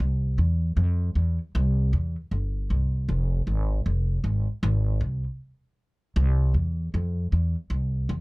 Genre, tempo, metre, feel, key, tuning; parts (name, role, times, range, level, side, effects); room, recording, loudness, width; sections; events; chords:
reggae; 78 BPM; 4/4; swing 61% on 16ths; F harmonic minor; A4 = 440 Hz
upright bass; solo; 0.0-8.2 s; F1 to F2; -23 LUFS; equal
light reverb; dry, close 1970s-style studio recording; -23 LUFS; side -25 dB against mid
0.0-8.2 A section